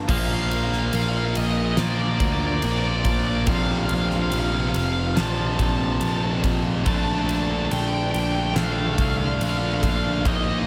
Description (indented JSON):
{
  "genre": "post-rock",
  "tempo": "71 BPM",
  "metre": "4/4",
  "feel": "straight",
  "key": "Bb major",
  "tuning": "A4 = 439 Hz",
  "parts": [
    { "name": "fuzz picked electric bass", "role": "bass", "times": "0.0-10.7 s", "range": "F1 to D2", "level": "-27 LUFS", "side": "equal", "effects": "overdrive" },
    { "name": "overdriven electric guitar", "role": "melody", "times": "0.1-10.7 s", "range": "D5 to A5", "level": "-30 LUFS", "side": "equal", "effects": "slapback echo, digital delay" },
    { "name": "tight distorted guitar", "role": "riff", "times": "0.1-10.7 s", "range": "F2 to Eb4", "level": "-28 LUFS", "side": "equal", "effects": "distortion, slapback echo" },
    { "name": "huge arena drum kit", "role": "drums", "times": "0.1-10.5 s", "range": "crash cymbal, kick drum, ride cymbal, snare drum", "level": "-29 LUFS", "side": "equal", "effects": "none" }
  ],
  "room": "moderate lush hall reverb, RT60 2.7 s",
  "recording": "big arena sound",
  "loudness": "-23 LUFS",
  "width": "mono",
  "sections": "0.1-10.7 A section",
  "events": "none",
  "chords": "0.1 Bb; 3.5 F; 6.9 Dm/Bb"
}